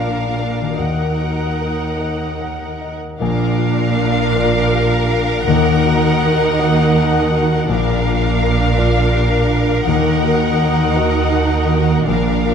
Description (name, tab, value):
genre	cinematic, emotional film score for orchestra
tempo	49-55 BPM (dotted quarters)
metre	6/8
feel	rubato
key	unclear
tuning	A4 = 441 Hz
part	warm symphonic violin section	melody	0.0-12.5 s	F5 to Gb5	-22 LUFS	left 3 dB	none
part	rich symphonic violin section	second line	0.0-12.5 s	Bb4	-22 LUFS	left 1 dB	none
part	clear concert grand piano	accompaniment	0.0-12.5 s	Bb1 to Gb5	-22 LUFS	left 2 dB	none
part	warm symphonic viola section	accompaniment	0.0-12.5 s	D4 to Eb4	-24 LUFS	right 4 dB	none
part	concert harp	arpeggios	0.0-12.5 s	Bb2 to D6	-23 LUFS	left 8 dB	none
part	dark symphonic cello section	bass	0.0-12.5 s	Eb2 to Eb3	-21 LUFS	right 2 dB	none
part	rich symphonic double bass section	bass	3.2-12.5 s	Bb1 to Eb2	-20 LUFS	right 4 dB	none
room	moderate scoring stage reverb, RT60 1.4 s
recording	minimal, uncompressed stereo recording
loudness	-14 LUFS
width	side -7 dB against mid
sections	0.0-3.2 A section; 3.2-12.5 B section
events	none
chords	0.0 Bb; 0.8 Ebm; 3.2 Bb; 5.5 Ebm; 7.7 Bb; 9.9 Ebm